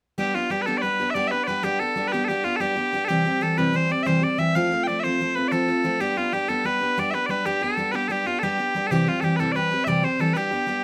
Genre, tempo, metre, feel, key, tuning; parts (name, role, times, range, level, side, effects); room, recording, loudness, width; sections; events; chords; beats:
celtic folk, Celtic slip jig; 124 BPM (dotted quarters); 9/8; straight; G mixolydian; A4 = 440 Hz
loud bright bagpipes; melody; 0.2-10.8 s; F4 to G5; -26 LUFS; equal
picked steel-string acoustic guitar; accompaniment; 0.2-10.8 s; C3 to G4; -27 LUFS; equal
moderate studio reverb, RT60 0.6 s; close, detailed microphones; -23 LUFS; mono
0.2-10.8 A section
0.2 G; 3.1 C; 4.5 F; 6.0 G; 8.9 C
| 0.18 0.67 1.15 | 1.64 2.12 2.61 | 3.09 3.58 4.06 | 4.55 5.03 5.52 | 6.00 6.49 6.97 | 7.45 7.94 8.42 | 8.90 9.39 9.87 | 10.35 10.83